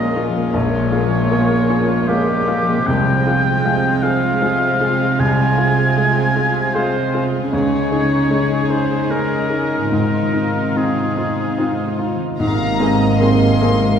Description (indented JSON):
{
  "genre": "cinematic, emotional film score for orchestra",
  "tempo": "71-78 BPM",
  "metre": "3/4",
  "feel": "rubato",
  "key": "Ab major",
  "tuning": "A4 = 444 Hz",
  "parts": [
    { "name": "warm oboe", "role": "second line", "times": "0.0-12.0 s", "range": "G4 to Ab5", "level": "-21 LUFS", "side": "equal", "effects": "none" },
    { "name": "warm symphonic violin section", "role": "second line", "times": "0.0-14.0 s", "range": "C4 to F5", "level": "-25 LUFS", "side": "left 3 dB", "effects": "none" },
    { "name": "clear baby grand piano", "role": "accompaniment", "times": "0.0-14.0 s", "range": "Bb1 to Ab4", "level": "-20 LUFS", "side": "equal", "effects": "none" },
    { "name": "dark symphonic viola section", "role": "accompaniment", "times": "0.0-14.0 s", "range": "C3 to Bb4", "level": "-24 LUFS", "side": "equal", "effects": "none" },
    { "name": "concert harp", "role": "arpeggios", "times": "0.0-14.0 s", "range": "Ab2 to Bb4", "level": "-24 LUFS", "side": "left 3 dB", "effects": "none" },
    { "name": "warm symphonic cello section", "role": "bass", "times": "0.0-14.0 s", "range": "Ab2 to Db3", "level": "-21 LUFS", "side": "right 2 dB", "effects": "none" },
    { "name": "warm symphonic violin section", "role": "melody", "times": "12.4-14.0 s", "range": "Bb5 to C6", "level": "-24 LUFS", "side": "left 3 dB", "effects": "none" },
    { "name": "dark French horn section", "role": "sustained chords", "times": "12.4-14.0 s", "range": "C3 to Bb3", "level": "-22 LUFS", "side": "left 2 dB", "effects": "none" },
    { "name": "dark symphonic double bass section", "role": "bass", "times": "12.4-14.0 s", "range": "Ab1", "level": "-22 LUFS", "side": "right 2 dB", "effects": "none" }
  ],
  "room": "wet scoring stage reverb, RT60 1.7 s",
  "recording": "heard from further back in the room",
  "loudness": "-14 LUFS",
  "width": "side -8 dB against mid",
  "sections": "0.0-12.4 A section; 12.4-14.0 A section",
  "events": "none",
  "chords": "0.0 Bbm7; 2.9 Fm/C; 7.5 Dbsus2; 9.9 Ab6; 12.4 Abadd9"
}